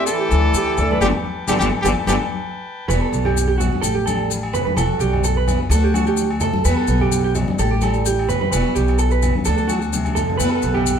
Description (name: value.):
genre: highlife guitar band.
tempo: 128 BPM.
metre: 4/4.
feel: straight.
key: E minor.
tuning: A4 = 441 Hz.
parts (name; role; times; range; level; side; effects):
clear trumpet; melody; 0.0-2.1 s; G4 to A4; -23 LUFS; left 1 dB; none.
trombone with metal mute; second line; 0.0-2.2 s; D3 to E3; -28 LUFS; left 5 dB; none.
picked acoustic archtop guitar; accompaniment; 0.0-11.0 s; E2 to B4; -25 LUFS; left 2 dB; none.
overdriven combo organ; sustained chords; 0.0-2.9, 10.4-11.0 s; B4 to A5; -32 LUFS; left 1 dB; spring reverb.
electric guitar through a small old amp; arpeggios; 0.0-11.0 s; F#4 to B4; -22 LUFS; right 8 dB; none.
maracas; percussion; 0.1-11.0 s; none; -29 LUFS; left 7 dB; none.
upright bass; bass; 0.3-11.0 s; E1 to D3; -20 LUFS; equal; none.
agogo bells; percussion; 0.3-10.9 s; none; -29 LUFS; left 7 dB; none.
congas; percussion; 0.3-10.9 s; none; -25 LUFS; left 2 dB; none.
room: moderate stone room reverb, RT60 1.1 s.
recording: band playing live in one room.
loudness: -16 LUFS.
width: side -8 dB against mid.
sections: 0.0-2.9 A section; 2.9-11.0 B section.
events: band accent 1.0-2.9; drum fill 9.9-10.4.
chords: 0.0 Dsus2; 1.0 Gadd9; 2.9 Emadd9; 3.8 Gmaj9/A; 4.8 Emadd9; 5.7 D; 6.6 Emadd9 (rootless); 7.6 Am7; 8.5 Emadd9; 9.5 D; 10.4 Emadd9.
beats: 0.08 0.55 | 1.02 1.49 1.96 2.43 | 2.89 3.36 3.83 4.30 | 4.77 5.24 5.71 6.17 | 6.64 7.11 7.58 8.05 | 8.52 8.99 9.46 9.93 | 10.40 10.87.